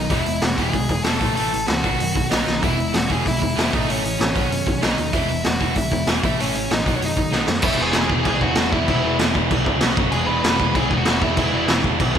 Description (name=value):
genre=punk rock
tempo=192 BPM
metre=4/4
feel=straight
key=E major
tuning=A4 = 439 Hz
part: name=dark smooth lead guitar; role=melody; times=0.0-11.8 s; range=C#4 to B5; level=-25 LUFS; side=equal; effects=overdrive, slapback echo, tape echo
part: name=crunchy overdriven guitar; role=riff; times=0.0-12.2 s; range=A2 to C#5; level=-26 LUFS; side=left 12 dB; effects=slapback echo
part: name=overdriven electric guitar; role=riff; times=0.0-12.2 s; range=E2 to B3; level=-26 LUFS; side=right 12 dB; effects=slapback echo
part: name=overdriven picked electric bass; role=bass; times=0.0-12.2 s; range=E1 to F#2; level=-28 LUFS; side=equal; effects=none
part: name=raw garage drum kit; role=drums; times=0.1-12.2 s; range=crash cymbal, hi-hat, kick drum, snare drum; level=-20 LUFS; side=equal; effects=none
room=light reverb, studio ambience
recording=none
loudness=-17 LUFS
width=side -8 dB against mid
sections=0.0-7.6 A section; 7.6-12.2 B section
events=drum fill 2.5, 7.3-7.6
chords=0.1 E; 1.2 A; 1.8 B; 2.6 E; 3.7 A; 4.4 B; 5.1 E; 6.2 A; 6.9 B; 7.6 E; 9.8 B5; 10.0 F#5; 10.1 E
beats=| 0.10 0.42 0.73 1.05 | 1.36 1.68 1.99 2.31 | 2.62 2.94 3.25 3.57 | 3.88 4.20 4.51 4.82 | 5.14 5.45 5.76 6.08 | 6.39 6.70 7.02 7.33 | 7.64 7.95 8.26 8.57 | 8.89 9.20 9.51 9.82 | 10.13 10.44 10.75 11.06 | 11.37 11.69 12.00